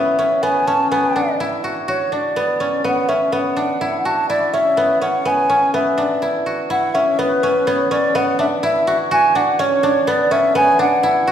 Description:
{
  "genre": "contemporary instrumental, chamber music in an uneven meter",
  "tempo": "124 BPM",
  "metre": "5/4",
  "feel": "straight",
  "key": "unclear",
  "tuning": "A4 = 441 Hz",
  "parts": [
    { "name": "wooden flute", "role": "melody", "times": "0.0-11.3 s", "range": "B4 to A5", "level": "-17 LUFS", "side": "equal", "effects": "none" },
    { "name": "guzheng", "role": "arpeggios", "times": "0.0-11.3 s", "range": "B3 to F#4", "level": "-19 LUFS", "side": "equal", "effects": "none" }
  ],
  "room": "wet recital hall reverb, RT60 1.7 s",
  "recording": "recorded in a church or concert hall, vinyl crackle",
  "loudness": "-15 LUFS",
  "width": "side -9 dB against mid",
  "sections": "0.0-6.7 A section; 6.7-11.3 B section",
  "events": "none",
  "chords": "0.0 Bsus24"
}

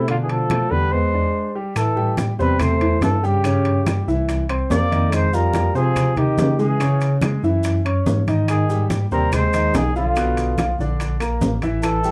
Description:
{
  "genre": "Afro-Cuban jazz",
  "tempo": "143 BPM",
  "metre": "4/4",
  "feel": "straight",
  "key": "unclear",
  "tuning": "A4 = 440 Hz",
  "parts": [
    { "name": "dark trumpet", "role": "melody", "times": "0.0-12.1 s", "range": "F4 to D5", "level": "-26 LUFS", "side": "equal", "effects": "none" },
    { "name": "breathy trombone", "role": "second line", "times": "0.0-12.1 s", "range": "Db3 to Bb3", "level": "-28 LUFS", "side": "equal", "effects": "none" },
    { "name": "warm concert grand piano", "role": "accompaniment", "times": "0.0-12.1 s", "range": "B2 to C#6", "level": "-26 LUFS", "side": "equal", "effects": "none" },
    { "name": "tine electric piano", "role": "bass", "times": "0.0-12.1 s", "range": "A1 to Db3", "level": "-23 LUFS", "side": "equal", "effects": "medium tremolo" },
    { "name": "bongos", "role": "percussion", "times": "0.1-12.1 s", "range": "none", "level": "-33 LUFS", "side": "equal", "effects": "none" },
    { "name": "claves", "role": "percussion", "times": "0.1-12.1 s", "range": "none", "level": "-39 LUFS", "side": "equal", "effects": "none" },
    { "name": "congas", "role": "percussion", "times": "0.1-12.1 s", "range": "none", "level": "-29 LUFS", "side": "equal", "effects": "none" },
    { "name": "timbales", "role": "percussion", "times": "0.1-12.0 s", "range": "none", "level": "-32 LUFS", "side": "equal", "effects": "none" },
    { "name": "maracas", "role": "percussion", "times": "1.8-12.1 s", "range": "none", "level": "-44 LUFS", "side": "equal", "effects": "none" }
  ],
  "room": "light reverb",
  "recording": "dark, warm production",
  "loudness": "-19 LUFS",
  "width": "mono",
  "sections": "0.0-1.8 A section; 1.8-12.1 B section",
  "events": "none",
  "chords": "0.1 Bm7b5; 0.9 E7b13; 1.8 Am7; 3.4 C#dim; 4.3 C7; 5.1 Fm9; 6.8 Dbm; 7.6 F#sus2; 8.5 Abmaj7; 10.2 Bdim; 11.0 Bb"
}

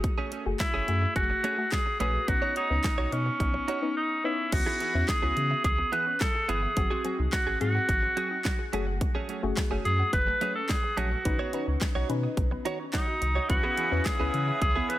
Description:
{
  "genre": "dance-pop",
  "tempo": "107 BPM",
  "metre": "4/4",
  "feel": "straight",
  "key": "C# minor",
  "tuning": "A4 = 444 Hz",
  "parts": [
    { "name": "soft round pluck", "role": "accompaniment", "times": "0.0-14.8 s", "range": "A3 to B4", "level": "-35 LUFS", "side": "left 4 dB", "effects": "chorus, sidechain pumping" },
    { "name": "direct-recorded clean electric guitar", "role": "riff", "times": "0.0-15.0 s", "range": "A3 to C#5", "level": "-35 LUFS", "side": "right 5 dB", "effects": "analog chorus" },
    { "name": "pop drum kit", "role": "drums", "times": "0.0-15.0 s", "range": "crash cymbal, handclaps, hi-hat, kick drum, snare drum", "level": "-30 LUFS", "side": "equal", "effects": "none" },
    { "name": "warm sub bass", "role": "bass", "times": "0.5-14.8 s", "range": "F#1 to C#3", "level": "-30 LUFS", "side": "equal", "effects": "sidechain pumping" },
    { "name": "bright alto saxophone", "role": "melody", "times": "0.6-15.0 s", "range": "C#4 to B4", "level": "-29 LUFS", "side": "equal", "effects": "digital delay" },
    { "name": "glassy wavetable pluck", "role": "arpeggios", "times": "4.5-15.0 s", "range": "D#3 to F#5", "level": "-40 LUFS", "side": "right 1 dB", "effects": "chorus, sidechain pumping, digital delay" },
    { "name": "accordion", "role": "sustained chords", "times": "13.5-15.0 s", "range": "C#3 to E4", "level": "-36 LUFS", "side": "equal", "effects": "sidechain pumping" }
  ],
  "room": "light reverb, digital ambience",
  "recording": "none",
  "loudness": "-25 LUFS",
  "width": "side -15 dB against mid",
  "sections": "0.0-4.5 A section; 4.5-15.0 B section",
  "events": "drums muted 4.0-4.5",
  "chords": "0.0 F#madd9; 2.3 Badd9; 4.5 C#m7; 6.8 G#7; 8.7 F#madd9; 11.3 Badd9; 13.5 C#m7"
}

